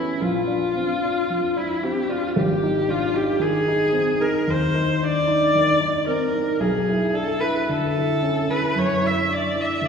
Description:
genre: classical, impressionist duo for viola and grand piano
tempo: 56 BPM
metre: 4/4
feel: rubato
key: unclear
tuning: A4 = 440 Hz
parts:
  - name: rich viola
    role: melody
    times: 0.0-9.9 s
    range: E4 to E5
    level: -22 LUFS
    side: equal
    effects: none
  - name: dark grand piano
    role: accompaniment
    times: 0.0-9.9 s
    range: G#1 to E4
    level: -23 LUFS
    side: left 1 dB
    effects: none
room: wet scoring stage reverb, RT60 2.0 s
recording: heard from further back in the room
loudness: -19 LUFS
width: side -6 dB against mid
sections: 0.0-9.9 A section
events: none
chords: 0.2 Bbadd9; 2.4 G#; 6.6 Bmadd9

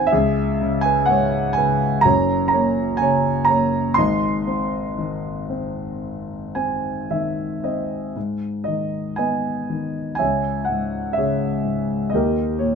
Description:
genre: classical, lyrical solo piano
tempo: 54-64 BPM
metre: 4/4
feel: rubato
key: G# minor from 8.2 s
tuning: A4 = 440 Hz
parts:
  - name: dark grand piano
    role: solo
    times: 0.0-12.8 s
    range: F#1 to B#5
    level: -19 LUFS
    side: equal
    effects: none
room: light reverb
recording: none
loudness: -19 LUFS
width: side -6 dB against mid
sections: 0.0-8.2 A section; 8.2-12.8 B section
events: grand piano fill 6.0-8.2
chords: 0.1 C#5; 2.0 F#; 4.0 G#; 8.2 G#m; 10.2 C#m; 12.1 D#

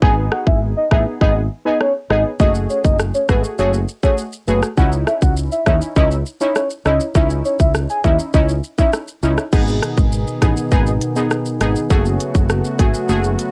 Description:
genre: dancehall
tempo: 101 BPM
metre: 4/4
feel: straight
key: C# minor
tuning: A4 = 440 Hz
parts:
  - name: soft octave-layered synth lead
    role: melody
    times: 0.0-8.9 s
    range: B4 to G#5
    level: -21 LUFS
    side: equal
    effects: chorus, tremolo, cassette tape
  - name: synth brass stab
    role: accompaniment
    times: 0.0-13.3 s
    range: A3 to G#4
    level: -25 LUFS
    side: equal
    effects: chorus, cassette tape
  - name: woody fretless electric bass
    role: bass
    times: 0.0-13.3 s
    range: F#1 to D#2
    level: -22 LUFS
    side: equal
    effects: none
  - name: island pop drum kit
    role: drums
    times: 0.0-13.5 s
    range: crash cymbal, hi-hat, kick drum, rim click, shaker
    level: -19 LUFS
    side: equal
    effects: cassette tape
  - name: warm analog pad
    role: sustained chords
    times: 9.5-13.5 s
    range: B2 to G#4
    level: -25 LUFS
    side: equal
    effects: chorus, sidechain pumping, cassette tape
room: little or no reverb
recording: home recording on cassette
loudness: -17 LUFS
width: mono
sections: 0.0-9.5 A section; 9.5-13.5 B section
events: none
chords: 0.0 G#m; 2.4 F#madd9; 4.8 C#madd9; 9.5 G#m; 11.9 F#madd9

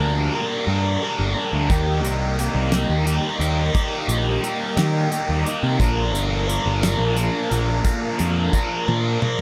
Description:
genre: psychedelic rock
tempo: 59 BPM (dotted quarters)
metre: 6/8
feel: straight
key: unclear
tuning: A4 = 436 Hz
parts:
  - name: rich symphonic string section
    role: sustained chords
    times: 0.0-9.4 s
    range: Bb4 to Bb5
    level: -35 LUFS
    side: equal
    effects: none
  - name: biting overdriven guitar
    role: riff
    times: 0.0-9.4 s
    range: G2 to Bb4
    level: -25 LUFS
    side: equal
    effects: phaser
  - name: fuzz picked electric bass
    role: bass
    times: 0.0-9.2 s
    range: G1 to Eb3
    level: -24 LUFS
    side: equal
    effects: overdrive
  - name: damped 70s drum kit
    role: drums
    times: 1.7-9.4 s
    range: hi-hat, kick drum, snare drum, toms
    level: -25 LUFS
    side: equal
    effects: none
room: little or no reverb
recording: none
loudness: -21 LUFS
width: mono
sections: 0.0-9.4 A section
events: drum fill 8.9-9.4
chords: 0.0 Gm; 1.7 Eb; 5.8 Bb

